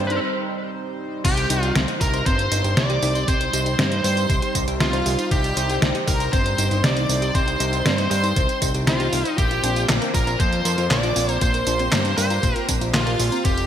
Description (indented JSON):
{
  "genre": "synthwave",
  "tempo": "118 BPM",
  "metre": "4/4",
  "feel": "straight",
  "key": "C minor",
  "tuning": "A4 = 440 Hz",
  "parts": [
    { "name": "bluesy overdriven lead guitar", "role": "melody", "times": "0.0-13.7 s", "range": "F4 to D5", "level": "-25 LUFS", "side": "equal", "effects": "distortion, digital delay" },
    { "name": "airy dreamy lead", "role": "second line", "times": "0.0-13.7 s", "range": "F5 to D6", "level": "-29 LUFS", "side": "equal", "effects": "chorus, digital delay" },
    { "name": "warm analog pad", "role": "sustained chords", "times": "0.0-13.7 s", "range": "G3 to C5", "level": "-29 LUFS", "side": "right 1 dB", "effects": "chorus" },
    { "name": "thumb-piano-like synth pluck", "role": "arpeggios", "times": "0.0-13.6 s", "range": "Bb3 to C5", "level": "-31 LUFS", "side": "left 3 dB", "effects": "chorus, digital delay" },
    { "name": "clean electric guitar", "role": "riff", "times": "0.0-13.5 s", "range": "Bb3 to C5", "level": "-34 LUFS", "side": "left 4 dB", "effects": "none" },
    { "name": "fat analog bass", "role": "bass", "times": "0.0-13.7 s", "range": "F1 to G2", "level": "-24 LUFS", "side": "equal", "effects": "tube saturation, sidechain pumping" },
    { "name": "detuned 8-bit digital drum machine", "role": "drums", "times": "0.1-13.7 s", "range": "crash cymbal, handclaps, hi-hat, snare drum, tambourine", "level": "-24 LUFS", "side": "right 1 dB", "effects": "gated reverb" },
    { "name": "electronic kick drum", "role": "drums", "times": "1.2-13.6 s", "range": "none", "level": "-23 LUFS", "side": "equal", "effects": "none" }
  ],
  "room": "moderate lush hall reverb, RT60 2.0 s",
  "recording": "bright 1980s-style digital production",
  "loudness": "-18 LUFS",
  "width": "side -9 dB against mid",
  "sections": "0.0-1.2 A section; 1.2-13.7 B section",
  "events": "filter sweep on analog synth pad 0.0-1.2; break 0.2-1.2",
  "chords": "0.0 Cm; 9.4 Bbsus2"
}